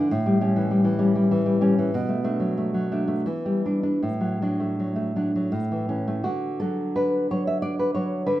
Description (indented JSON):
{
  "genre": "romantic piece for solo classical guitar",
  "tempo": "78-100 BPM",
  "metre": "3/4",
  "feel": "rubato",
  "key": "D major",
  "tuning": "A4 = 440 Hz",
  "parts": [
    { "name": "nylon-string guitar", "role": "solo", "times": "0.0-8.4 s", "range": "A2 to E5", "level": "-21 LUFS", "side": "equal", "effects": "none" }
  ],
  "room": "moderate recital hall reverb, RT60 1.9 s",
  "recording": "minimal, uncompressed stereo recording",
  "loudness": "-21 LUFS",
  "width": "side -14 dB against mid",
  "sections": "0.0-6.3 A section; 6.3-8.4 B section",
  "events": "none",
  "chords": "0.1 A7; 1.9 Bm7; 3.3 Em7; 4.0 D/A; 5.5 A; 6.3 D"
}